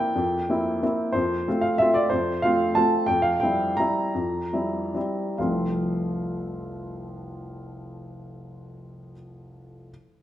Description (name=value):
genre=classical, piano waltz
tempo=122-192 BPM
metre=3/4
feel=rubato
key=F major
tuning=A4 = 439 Hz
part: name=warm upright piano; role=solo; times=0.0-9.9 s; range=F1 to Bb5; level=-23 LUFS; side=equal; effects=none
room=moderate recital hall reverb, RT60 1.6 s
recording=none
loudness=-22 LUFS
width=side -12 dB against mid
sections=0.0-5.4 A section; 5.4-7.8 B section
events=slowing down 2.6-5.4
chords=0.0 C7/F; 1.1 F; 3.1 C7/F; 5.4 F